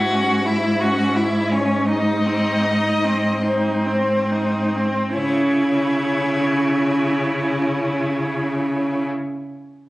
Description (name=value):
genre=classical, slow romantic movement for string quartet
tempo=33-44 BPM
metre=4/4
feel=rubato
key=C# minor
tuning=A4 = 444 Hz
part: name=rich violin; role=melody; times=0.0-9.0 s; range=B#4 to F#5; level=-27 LUFS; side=left 2 dB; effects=none
part: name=clear violin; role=second line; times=0.0-9.1 s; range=B#3 to F#4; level=-25 LUFS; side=left 1 dB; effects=none
part: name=rich viola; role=accompaniment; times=0.0-9.1 s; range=B#3 to E4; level=-24 LUFS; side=equal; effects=none
part: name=rich cello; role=bass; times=0.0-9.0 s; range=G#2 to C#3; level=-21 LUFS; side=right 1 dB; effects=none
room=light reverb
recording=recorded on a phone in the room, club reverb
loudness=-17 LUFS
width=side -18 dB against mid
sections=0.0-5.1 A section; 5.1-9.9 B section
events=slowing down 0.0-5.1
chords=0.0 C#m/G#; 1.9 G#; 5.1 C#m